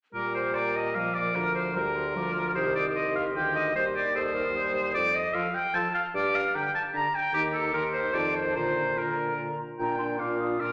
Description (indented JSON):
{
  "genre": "quick classical-period movement for wind quintet",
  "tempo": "150 BPM",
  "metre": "3/4",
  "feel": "straight",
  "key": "Bb major",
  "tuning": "A4 = 440 Hz",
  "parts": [
    { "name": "silver concert flute", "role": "melody", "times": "0.1-10.7 s", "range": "A5 to F6", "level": "-39 LUFS", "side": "equal", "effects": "none" },
    { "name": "clear oboe", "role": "second line", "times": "0.1-10.7 s", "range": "G4 to Bb5", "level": "-30 LUFS", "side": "equal", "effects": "none" },
    { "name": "clear clarinet", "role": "accompaniment", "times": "0.1-10.7 s", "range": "F4 to C5", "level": "-40 LUFS", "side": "equal", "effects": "none" },
    { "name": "warm French horn", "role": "accompaniment", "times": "0.1-10.7 s", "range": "D3 to D4", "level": "-38 LUFS", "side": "equal", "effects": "none" },
    { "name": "mellow bassoon", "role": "bass", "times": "0.1-10.7 s", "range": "C2 to Bb2", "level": "-36 LUFS", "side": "equal", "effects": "none" }
  ],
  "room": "wet recital hall reverb, RT60 1.7 s",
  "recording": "none",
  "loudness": "-28 LUFS",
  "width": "mono",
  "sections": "0.1-9.8 A section",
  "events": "none",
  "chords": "0.1 Bb; 1.3 Bb/D; 2.6 Cm; 3.8 Cm/Eb; 4.9 F; 6.1 Gm; 7.3 Eb; 8.1 F7; 8.6 Bb"
}